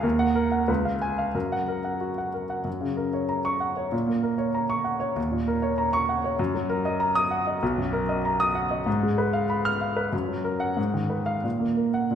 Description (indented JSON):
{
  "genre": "classical, virtuoso piano study",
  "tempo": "89-100 BPM",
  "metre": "2/4",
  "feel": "rubato",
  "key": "F# major",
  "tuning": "A4 = 440 Hz",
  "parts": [
    { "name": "warm grand piano", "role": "solo", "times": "0.0-12.2 s", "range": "B1 to F6", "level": "-23 LUFS", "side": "equal", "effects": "none" }
  ],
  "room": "wet recital hall reverb, RT60 1.7 s",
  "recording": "heard from further back in the room",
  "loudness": "-23 LUFS",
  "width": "side -8 dB against mid",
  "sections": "0.0-2.7 A section; 2.7-12.2 B section",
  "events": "none",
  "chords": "0.0 D#m; 0.7 C#7; 1.3 F#; 3.9 F#/A#; 5.2 D#m7; 6.4 D#m/F#; 7.6 Bmaj7; 8.9 Fdim/Ab; 10.1 Gb; 10.8 Fm7b5/Ab; 11.4 Gb/Bb"
}